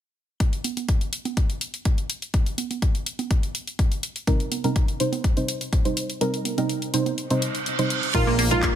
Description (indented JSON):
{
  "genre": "progressive house",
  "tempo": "124 BPM",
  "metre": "4/4",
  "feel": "straight",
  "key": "C minor",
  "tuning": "A4 = 441 Hz",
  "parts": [
    { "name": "electronic kick drum", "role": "drums", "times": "0.4-8.7 s", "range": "none", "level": "-22 LUFS", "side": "left 1 dB", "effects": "small room ambience" },
    { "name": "house drum kit", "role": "drums", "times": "0.4-8.7 s", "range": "crash cymbal, handclaps, hi-hat", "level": "-30 LUFS", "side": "left 2 dB", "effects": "sidechain pumping on hats, small room ambience, sidechain pumping on cymbals" },
    { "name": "electronic congas and toms", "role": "percussion", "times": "0.6-8.6 s", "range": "none", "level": "-33 LUFS", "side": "right 8 dB", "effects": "sidechain pumping on perc, small room ambience, sidechain pumping on toms" },
    { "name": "deep mellow chord stab", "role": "stabs", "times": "4.3-8.8 s", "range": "Bb2 to C5", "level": "-24 LUFS", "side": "right 2 dB", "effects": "chorus, sidechain pumping, digital delay" },
    { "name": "reverse cymbal", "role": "sound effects", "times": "7.4-8.1 s", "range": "none", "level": "-28 LUFS", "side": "right 6 dB", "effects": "none" },
    { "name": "wide unison pluck", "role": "arpeggios", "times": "8.1-8.7 s", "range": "Bb3 to F4", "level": "-22 LUFS", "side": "right 1 dB", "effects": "phaser, sidechain pumping" },
    { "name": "fat analog bass", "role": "bass", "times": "8.1-8.8 s", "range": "Bb1", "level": "-25 LUFS", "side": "left 1 dB", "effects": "sidechain pumping" }
  ],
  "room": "light reverb",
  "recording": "none",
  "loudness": "-22 LUFS",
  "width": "side -10 dB against mid",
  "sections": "0.4-8.1 A section",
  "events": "kick drops out 6.2-8.1; reverse cymbal 7.4-8.1",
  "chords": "0.4 N.C.; 4.3 Cm7; 8.1 Bb7sus4"
}